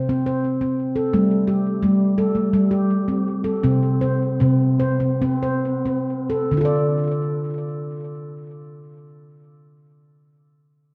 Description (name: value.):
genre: world meditative, meditative tuned percussion.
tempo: 130-173 BPM (eighths).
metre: 7/8.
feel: straight.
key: D minor pentatonic.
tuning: A4 = 440 Hz.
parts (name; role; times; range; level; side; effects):
handpan; solo; 0.0-10.3 s; C3 to D5; -21 LUFS; equal; delay.
room: wet recital hall reverb, RT60 1.6 s, studio ambience.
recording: dark, warm production.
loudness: -21 LUFS.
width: mono.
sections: 0.0-6.5 A section; 6.5-9.7 B section.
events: slowing down 1.1-6.5.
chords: 0.0 Am/C; 1.1 Gsus24; 3.6 N.C.; 6.5 Dm.